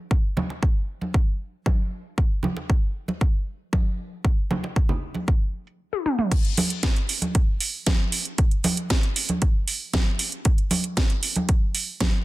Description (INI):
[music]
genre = nu-disco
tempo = 116 BPM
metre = 4/4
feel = straight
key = none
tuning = none
[part]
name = electronic kick drum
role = drums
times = 0.1-12.1 s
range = none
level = -21 LUFS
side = equal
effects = none
[part]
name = house drum kit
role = drums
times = 0.1-12.1 s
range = crash cymbal, hi-hat, snare drum, toms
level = -25 LUFS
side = right 1 dB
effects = low-pass filter on hats, low-pass filter on toms, low-pass filter on cymbals, low-pass filter on snare
[part]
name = congas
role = percussion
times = 0.4-12.1 s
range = none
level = -27 LUFS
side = right 1 dB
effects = none
[sound]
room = little or no reverb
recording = dense, heavily limited modern master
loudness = -21 LUFS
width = side -18 dB against mid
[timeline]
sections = 0.0-6.3 A section; 6.3-12.2 B section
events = drum fill 5.9-6.3; drop 6.3-12.2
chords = none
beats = | 0.11 0.63 1.14 1.66 | 2.18 2.69 3.21 3.73 | 4.25 4.76 5.28 5.80 | 6.32 6.83 7.35 7.87 | 8.38 8.90 9.42 9.94 | 10.45 10.97 11.49 12.01